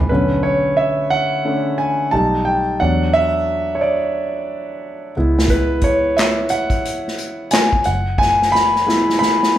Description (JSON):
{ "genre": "R&B, neo-soul", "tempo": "89 BPM", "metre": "4/4", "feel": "swing 62% on 16ths", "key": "B dorian", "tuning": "A4 = 440 Hz", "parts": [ { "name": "clear grand piano", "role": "accompaniment", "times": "0.0-9.6 s", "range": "D3 to B5", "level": "-16 LUFS", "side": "equal", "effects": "none" }, { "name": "vintage muted fingered electric bass", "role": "bass", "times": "0.0-9.6 s", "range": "F#1 to E2", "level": "-22 LUFS", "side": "equal", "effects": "none" }, { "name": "unplugged drum kit", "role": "drums", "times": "5.4-9.6 s", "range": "handclaps, hi-hat, kick drum, snare drum", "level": "-19 LUFS", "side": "equal", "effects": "none" } ], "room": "wet large studio reverb, RT60 0.8 s", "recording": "band playing live in one room", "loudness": "-15 LUFS", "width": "side -12 dB against mid", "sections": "0.1-9.6 A section", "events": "grand piano solo 0.1-9.6; drum fill 4.8-5.5, 8.2-9.6", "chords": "0.1 Bm9; 2.1 Baug7; 2.8 E9sus4; 5.2 C#m7; 7.8 F#9sus4" }